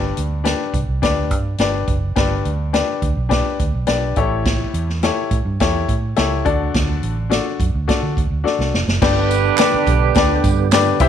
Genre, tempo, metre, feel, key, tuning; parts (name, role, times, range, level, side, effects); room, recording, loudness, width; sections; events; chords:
uptempo 1960s-style soul; 105 BPM; 4/4; straight; G major; A4 = 440 Hz
bright upright piano; accompaniment; 0.0-11.1 s; G2 to E5; -20 LUFS; left 8 dB
vintage muted fingered electric bass; bass; 0.0-11.1 s; F1 to D3; -21 LUFS; right 2 dB
swinging big-band drum kit; drums; 0.2-11.1 s; crash cymbal, hi-hat, kick drum, snare drum; -20 LUFS; right 1 dB
warm horn section; second line; 9.0-11.1 s; D4 to C5; -20 LUFS; right 12 dB
overdriven tonewheel organ; sustained chords; 9.0-11.1 s; D3 to G4; -24 LUFS; right 13 dB; slow rotary speaker, chorus vibrato
tambourine and handclaps; percussion; 9.3-11.1 s; -27 LUFS; right 7 dB
light reverb, small room ambience; 1960s-style stereo with parts hard left and right; -16 LUFS; side -9 dB against mid
0.0-9.0 A section; 9.0-11.1 B section
drum fill 8.5-9.0
0.0 G; 4.2 A7; 6.5 D; 9.0 G